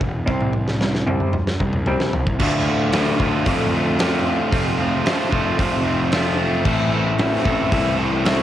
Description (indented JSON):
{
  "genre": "quiet-loud alternative rock",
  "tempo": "113 BPM",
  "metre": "4/4",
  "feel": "straight",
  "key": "D minor",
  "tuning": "A4 = 440 Hz",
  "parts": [
    { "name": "electric guitar through a small old amp", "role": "arpeggios", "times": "0.0-2.4 s", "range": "A2 to C4", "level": "-25 LUFS", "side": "equal", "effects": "harmonic tremolo, cassette tape" },
    { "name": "fuzz picked electric bass", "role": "bass", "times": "0.0-8.4 s", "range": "E1 to F2", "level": "-23 LUFS", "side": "equal", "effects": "overdrive" },
    { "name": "huge arena drum kit", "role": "drums", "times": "0.0-8.4 s", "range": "crash cymbal, hi-hat, kick drum, snare drum, toms", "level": "-22 LUFS", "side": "equal", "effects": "cassette tape" },
    { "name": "crunchy overdriven guitar", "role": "riff", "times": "2.4-8.4 s", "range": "D2 to A4", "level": "-22 LUFS", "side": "right 6 dB", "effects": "cassette tape" },
    { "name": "fuzz guitar", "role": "riff", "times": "2.4-8.4 s", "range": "D2 to A4", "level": "-23 LUFS", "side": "left 8 dB", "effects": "distortion, cassette tape" }
  ],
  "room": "light reverb, small room ambience",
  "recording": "home recording on cassette",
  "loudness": "-17 LUFS",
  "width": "side -12 dB against mid",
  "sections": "0.0-2.4 A section; 2.4-8.4 B section",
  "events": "drum fill 0.3-2.4",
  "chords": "0.3 C5; 2.4 Dm; 4.5 F; 6.7 Am"
}